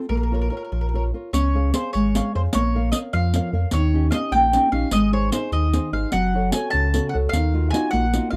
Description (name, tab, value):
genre	italian folk, Italian serenade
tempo	100 BPM (dotted quarters)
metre	6/8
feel	rubato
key	Db major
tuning	A4 = 440 Hz
part	nylon-string guitar	accompaniment	0.0-8.4 s	Db3 to F5	-26 LUFS	equal	none
part	mandolin	melody	0.1-8.4 s	Bb4 to A5	-27 LUFS	equal	none
part	pure sine sub bass	bass	0.1-8.4 s	Gb1 to F2	-24 LUFS	equal	none
part	riq	percussion	1.3-8.3 s	none	-30 LUFS	equal	none
room	little or no reverb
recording	dry, close 1970s-style studio recording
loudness	-21 LUFS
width	mono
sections	0.0-1.3 A section; 1.3-8.4 B section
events	none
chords	0.1 Bbm; 1.3 Db; 2.5 Bbm; 3.7 Eb7; 4.9 Ab; 6.1 Gbm; 7.3 Ebmadd9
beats	| 0.09 0.71 | 1.33 1.94 | 2.54 3.14 | 3.73 4.33 | 4.92 5.53 | 6.13 6.73 | 7.34 7.94